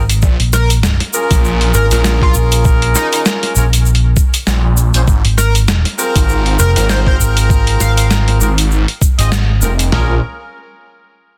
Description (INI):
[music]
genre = glitch hop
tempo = 99 BPM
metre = 4/4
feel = swing 56% on 16ths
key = Bb minor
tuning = A4 = 441 Hz
[part]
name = fingered electric bass with an envelope filter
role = bass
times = 0.0-9.6 s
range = F1 to Bb1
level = -15 LUFS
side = equal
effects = none
[part]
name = boom bap sampler-style drum kit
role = drums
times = 0.1-9.9 s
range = hi-hat, snare drum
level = -20 LUFS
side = equal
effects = studio reverb
[part]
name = egg shaker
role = percussion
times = 0.1-9.9 s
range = none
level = -24 LUFS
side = equal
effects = none
[part]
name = phased detuned saw bass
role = bass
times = 0.2-10.2 s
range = F1 to Bb1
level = -16 LUFS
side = equal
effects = phaser, tube saturation
[part]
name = boom bap sampler-style drum kit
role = drums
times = 0.2-10.1 s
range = kick drum, snare drum, toms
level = -15 LUFS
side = equal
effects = studio reverb
[part]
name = sync lead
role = melody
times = 0.5-8.1 s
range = Eb4 to F5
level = -24 LUFS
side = equal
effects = lush chorus, delay
[part]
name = bright horn section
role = stabs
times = 1.1-10.2 s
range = C4 to Eb5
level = -22 LUFS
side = equal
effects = sidechain pumping, delay
[sound]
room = little or no reverb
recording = dense, heavily limited modern master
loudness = -13 LUFS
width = mono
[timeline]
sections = 0.0-9.9 A section; 9.9-11.4 B section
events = drop 0.0-9.9; band accent 9.3-9.6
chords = 0.2 Bbm7; 5.1 Ab69; 9.9 Bbm7